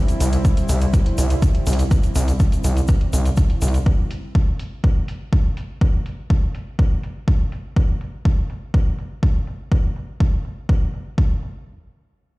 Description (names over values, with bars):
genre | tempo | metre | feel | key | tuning
melodic techno | 123 BPM | 4/4 | straight | unclear | A4 = 442 Hz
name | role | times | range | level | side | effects
warm analog pad | sustained chords | 0.0-3.8 s | G3 to E4 | -28 LUFS | right 1 dB | chorus, sidechain pumping
electronic hi-hat | drums | 0.1-11.5 s | none | -38 LUFS | equal | low-pass filter on hats, small room ambience
egg shaker | percussion | 0.1-3.8 s | none | -34 LUFS | left 2 dB | none
gritty driven synth bass | bass | 0.2-3.8 s | C2 | -17 LUFS | equal | sidechain pumping
electronic kick drum | drums | 0.4-11.3 s | none | -17 LUFS | equal | overdrive, small room ambience
room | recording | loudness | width
little or no reverb | played on a big sound system in a bare room, stone room reverb | -17 LUFS | side -21 dB against mid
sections
0.0-11.7 A section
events
filter sweep on drum 0.0-11.7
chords
0.0 C; 3.9 N.C.